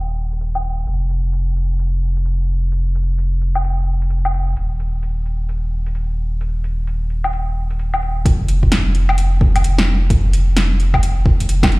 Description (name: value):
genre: future garage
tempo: 130 BPM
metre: 4/4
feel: swing 62% on 16ths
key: unclear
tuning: A4 = 440 Hz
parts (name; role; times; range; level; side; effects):
- warm sub bass; bass; 0.0-11.8 s; Eb1 to F1; -17 LUFS; equal; none
- deep house drum kit; drums; 0.3-11.8 s; hi-hat, snare drum, woodblock; -21 LUFS; equal; overdrive, low-pass filter on hats, studio reverb, low-pass filter on perc, low-pass filter on snare
- electronic kick drum; drums; 8.3-11.7 s; none; -16 LUFS; equal; overdrive, studio reverb
room: little or no reverb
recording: played on a big sound system in a bare room, large studio reverb, low-pass filter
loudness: -16 LUFS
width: side -23 dB against mid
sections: 0.0-8.3 A section; 8.3-11.8 B section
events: filter sweep 0.0-8.3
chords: none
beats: 0.41 | 0.87 1.33 1.79 2.26 | 2.72 3.18 3.64 4.10 | 4.57 5.03 5.49 5.95 | 6.41 6.87 7.33 7.79 | 8.26 8.72 9.18 9.64 | 10.10 10.56 11.03 11.49